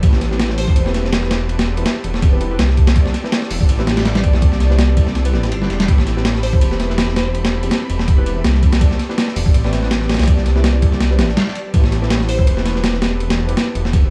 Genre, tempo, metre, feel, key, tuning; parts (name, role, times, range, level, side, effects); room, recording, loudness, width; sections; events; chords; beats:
drum and bass, jungle; 164 BPM; 4/4; swing 54% on 16ths; A minor; A4 = 440 Hz
rich studio string section; sustained chords; 0.0-14.1 s; C4 to B5; -31 LUFS; equal
dark detuned saw bass; bass; 0.0-14.1 s; E1 to C2; -20 LUFS; equal
breakbeat sampler-style drum kit; drums; 0.0-14.0 s; hi-hat, kick drum, ride cymbal, snare drum; -18 LUFS; equal; small room ambience
deep mellow chord stab; stabs; 0.3-14.0 s; C4 to B4; -29 LUFS; equal; chorus, dub echo
glassy wavetable pluck; melody; 0.6-0.8, 6.4-7.7, 12.3-12.5 s; C5; -32 LUFS; equal; chorus, dub echo
little or no reverb; -16 LUFS; mono
0.0-14.1 A section
break 5.2-5.9
0.0 Am9
| 0.03 0.40 0.76 1.13 | 1.50 1.86 2.23 2.59 | 2.96 3.32 3.69 4.06 | 4.42 4.79 5.15 5.52 | 5.88 6.25 6.62 6.98 | 7.35 7.71 8.08 8.45 | 8.81 9.18 9.54 9.91 | 10.28 10.64 11.01 11.37 | 11.74 12.11 12.47 12.84 | 13.20 13.57 13.93